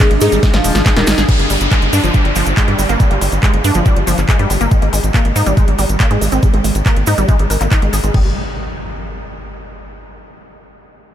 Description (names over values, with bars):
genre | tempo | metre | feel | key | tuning
psychedelic trance | 140 BPM | 4/4 | straight | unclear | A4 = 440 Hz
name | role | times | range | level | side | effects
oud | melody | 0.0-1.2 s | Eb3 to Ab3 | -20 LUFS | equal | phaser, sidechain pumping, analog delay
swarming drone | sustained chords | 0.0-1.3 s | D4 | -25 LUFS | right 1 dB | built-in reverb, sidechain pumping
wide unison pluck | riff | 0.0-8.3 s | F3 to Bb4 | -19 LUFS | moving between left 3 dB and right 4 dB | auto-pan, sidechain pumping, diffuse ambient delay
big-room dance drum kit | drums | 0.0-8.2 s | crash cymbal, handclaps, hi-hat, ride cymbal, snare drum | -21 LUFS | equal | none
electronic kick drum | drums | 0.0-8.2 s | none | -13 LUFS | equal | overdrive
cabasa | percussion | 0.0-8.1 s | none | -27 LUFS | right 4 dB | none
tight sequencer bass | bass | 0.1-8.3 s | Eb1 to Ab2 | -16 LUFS | equal | none
downlifter and impact | sound effects | 1.3-4.7, 8.2-9.9 s | none | -24 LUFS | equal | none
room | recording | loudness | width
light reverb | none | -11 LUFS | side -10 dB against mid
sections
0.0-1.3 A section; 1.3-8.1 B section; 8.1-9.9 C section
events
drop 0.0-1.3; drum fill 0.4-1.3; filter sweep on synth arpeggio sound 1.3-8.1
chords
0.0 Ab5; 1.3 G5; 4.7 Ab5; 8.1 N.C.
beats
0.00 0.43 0.86 | 1.29 1.72 2.14 2.57 | 3.00 3.43 3.86 4.29 | 4.71 5.14 5.57 6.00 | 6.43 6.86 7.29 7.71 | 8.14 8.57 9.00 9.43